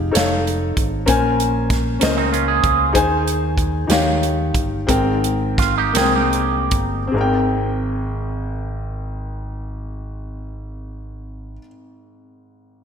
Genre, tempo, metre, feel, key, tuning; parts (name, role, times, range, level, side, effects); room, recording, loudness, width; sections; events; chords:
slow gospel; 48-64 BPM (dotted quarters); 6/8; straight; Ab major; A4 = 440 Hz
warm grand piano; accompaniment; 0.0-12.8 s; Ab1 to Ab5; -20 LUFS; left 2 dB
fingered electric bass; bass; 0.0-11.6 s; F1 to Eb2; -24 LUFS; equal
natural country drum kit; drums; 0.2-6.9 s; hi-hat, kick drum, snare drum; -22 LUFS; right 1 dB; gated reverb
electric guitar with an envelope filter; second line; 2.2-7.1 s; C4 to Ab4; -21 LUFS; right 7 dB
wet lush hall reverb, RT60 2.2 s; bright 1980s-style digital production; -16 LUFS; side -7 dB against mid
0.0-7.1 A section; 7.1-12.2 B section
slowing down 2.9-7.1
0.1 F7alt; 1.1 Bbm9; 2.9 Ab/Eb; 3.9 Eb9; 4.9 Abmaj9